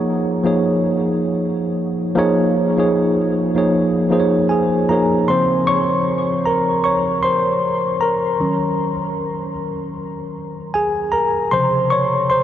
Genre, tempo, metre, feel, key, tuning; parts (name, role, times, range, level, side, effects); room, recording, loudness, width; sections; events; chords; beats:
R&B; 77 BPM; 4/4; swing 58% on 16ths; Db major; A4 = 440 Hz
mellow tine electric piano; solo; 0.0-12.4 s; C3 to Db6; -16 LUFS; equal; medium stereo tremolo, diffuse ambient delay
wet huge ambient reverb, RT60 8.2 s; dreamy mix soaked in reverb; -16 LUFS; side -10 dB against mid
0.0-5.3 A section; 5.3-12.4 B section
tine electric piano solo 5.3-12.4
0.0 Db69; 2.2 Ebsus2; 5.3 Db6; 8.4 Ebm7; 11.5 Db
0.60 1.38 | 2.16 2.94 3.72 4.50 | 5.28 6.05 6.83 7.61 | 8.39 9.17 9.95 10.73 | 11.51 12.29